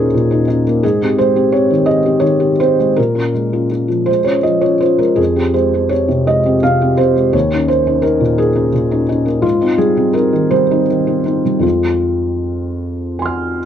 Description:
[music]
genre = neoclassical minimalist piano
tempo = 56 BPM (dotted quarters)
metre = 6/8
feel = uneven beats, rubato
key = F minor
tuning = A4 = 440 Hz
[part]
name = felt-muted upright piano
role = solo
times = 0.0-13.7 s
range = Eb2 to F6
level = -12 LUFS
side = equal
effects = none
[sound]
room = light reverb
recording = worn, warbling old tape, cassette tape, warbly pitch drift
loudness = -12 LUFS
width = side -9 dB against mid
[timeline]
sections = 0.0-13.7 A section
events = none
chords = 0.0 Eb7sus4; 0.8 Abmaj7; 3.0 Bbm7; 5.2 Fmadd9; 7.3 Eb7sus4; 9.4 Abmaj7; 11.6 Fm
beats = | 0.83 1.88 | 2.97 4.08 | 5.19 6.28 | 7.34 8.39 | 9.44 10.51 | 11.64 12.81

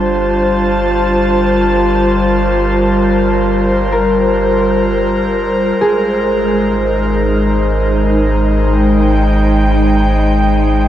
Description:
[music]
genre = ambient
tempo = free time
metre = none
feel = none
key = unclear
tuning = A4 = 440 Hz
[part]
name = airy breathy pad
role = sustained chords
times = 0.0-10.9 s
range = G3 to A5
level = -12 LUFS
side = equal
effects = chorus
[part]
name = concert harp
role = arpeggios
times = 0.0-9.1 s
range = Ab4 to Bb4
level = -19 LUFS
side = left 1 dB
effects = tape echo
[part]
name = warm sub bass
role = bass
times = 0.0-10.9 s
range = G1 to Ab1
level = -17 LUFS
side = equal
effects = none
[sound]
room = wet huge ambient reverb, RT60 7.4 s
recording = dark, warm production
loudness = -11 LUFS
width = side -11 dB against mid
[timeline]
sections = 0.0-10.9 A section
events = fade-in on sub bass 0.0-10.9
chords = 0.0 Gm11; 5.8 Abmaj7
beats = free time

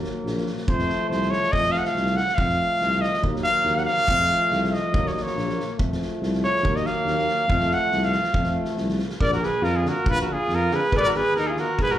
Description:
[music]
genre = balkan folk, Balkan brass band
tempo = 140 BPM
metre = 2/4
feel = straight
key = F phrygian dominant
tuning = A4 = 436 Hz
[part]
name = clear French horn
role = accompaniment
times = 0.0-11.7 s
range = A3 to Cb4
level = -32 LUFS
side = left 4 dB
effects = plate reverb, slapback echo
[part]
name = mellow euphonium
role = accompaniment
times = 0.0-11.7 s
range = D3 to Gb3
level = -32 LUFS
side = right 3 dB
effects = plate reverb
[part]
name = mellow tuba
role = bass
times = 0.0-12.0 s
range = Ab1 to F2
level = -27 LUFS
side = left 1 dB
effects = none
[part]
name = loose indie drum kit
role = percussion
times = 0.0-11.9 s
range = kick drum, snare drum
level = -29 LUFS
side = equal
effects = none
[part]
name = clear trumpet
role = melody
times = 0.7-12.0 s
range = Ab4 to Gb5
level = -23 LUFS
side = equal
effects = plate reverb, slapback echo
[part]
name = clear alto saxophone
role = second line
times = 9.2-12.0 s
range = Eb4 to Cb5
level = -25 LUFS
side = right 2 dB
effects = plate reverb, slapback echo
[sound]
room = moderate club reverb, RT60 0.6 s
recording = live gig heard through the venue's PA, club reverb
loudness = -20 LUFS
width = side -12 dB against mid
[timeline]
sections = 0.0-9.2 A section; 9.2-12.0 B section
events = trumpet solo 0.0-9.2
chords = 0.0 Ebm (rootless); 0.7 F; 3.2 Ebm; 4.1 F; 4.9 Ebm; 5.8 F; 6.6 Ebm; 7.5 F; 9.2 Bb; 10.9 Abm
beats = 0.24 | 0.67 1.09 | 1.52 1.95 | 2.38 2.80 | 3.23 3.66 | 4.08 4.51 | 4.94 5.37 | 5.79 6.22 | 6.65 7.07 | 7.50 7.93 | 8.35 8.78 | 9.21 9.64 | 10.06 10.49 | 10.92 11.35 | 11.78

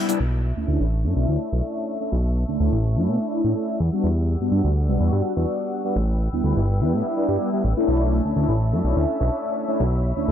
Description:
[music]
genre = house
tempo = 125 BPM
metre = 4/4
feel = straight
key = B minor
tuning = A4 = 440 Hz
[part]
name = mellow synth brass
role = accompaniment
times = 0.0-10.3 s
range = G3 to F#4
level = -24 LUFS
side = left 1 dB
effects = chorus, phaser, low-pass filter
[part]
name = clear symphonic string section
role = sustained chords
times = 0.0-10.3 s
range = G3 to E6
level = -34 LUFS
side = left 1 dB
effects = vintage 12-bit sampler grit, low-pass filter
[part]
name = fat analog bass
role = bass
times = 0.2-10.3 s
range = G1 to B2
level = -21 LUFS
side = equal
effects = tube saturation, low-pass filter
[sound]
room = light reverb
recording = none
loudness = -20 LUFS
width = side -9 dB against mid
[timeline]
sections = 0.2-10.3 A section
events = none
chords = 0.2 Bm11; 3.8 Em9; 6.0 A9sus4; 7.9 Bm11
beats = | 0.20 0.68 1.16 1.64 | 2.12 2.60 3.08 3.56 | 4.04 4.52 5.00 5.48 | 5.96 6.44 6.92 7.40 | 7.88 8.36 8.84 9.32 | 9.80 10.28

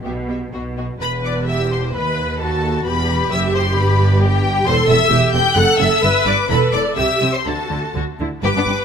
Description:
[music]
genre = quick classical-period movement for string orchestra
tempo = 120-135 BPM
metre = 2/4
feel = rubato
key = E minor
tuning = A4 = 440 Hz
[part]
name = rich chamber violin section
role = second line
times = 0.0-8.7 s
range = B3 to G5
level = -22 LUFS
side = left 2 dB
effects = none
[part]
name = rich studio viola section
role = accompaniment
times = 0.0-8.8 s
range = B3 to B4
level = -20 LUFS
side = equal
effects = none
[part]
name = rich chamber double bass section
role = bass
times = 0.0-8.7 s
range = E1 to D#2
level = -22 LUFS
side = right 3 dB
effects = none
[part]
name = rich studio cello section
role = bass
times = 0.0-8.7 s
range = D#2 to D3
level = -22 LUFS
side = right 1 dB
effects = none
[part]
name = warm studio violin section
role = melody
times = 0.1-8.8 s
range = D#5 to G6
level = -21 LUFS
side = left 4 dB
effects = none
[sound]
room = light reverb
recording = close, detailed microphones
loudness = -15 LUFS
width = side -7 dB against mid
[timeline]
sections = 0.0-1.0 A section; 1.0-8.4 A section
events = none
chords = 0.0 E5/B; 1.0 Em; 1.9 B7/D#; 2.9 Em; 3.8 G; 4.7 Am7/E; 5.6 F#m7; 6.0 G; 6.5 E5; 7.0 C; 7.5 D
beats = | 0.05 0.53 | 1.01 1.48 | 1.94 2.40 | 2.86 3.32 | 3.77 4.22 | 4.66 5.11 | 5.57 6.03 | 6.49 6.97 | 7.46 7.95 | 8.43

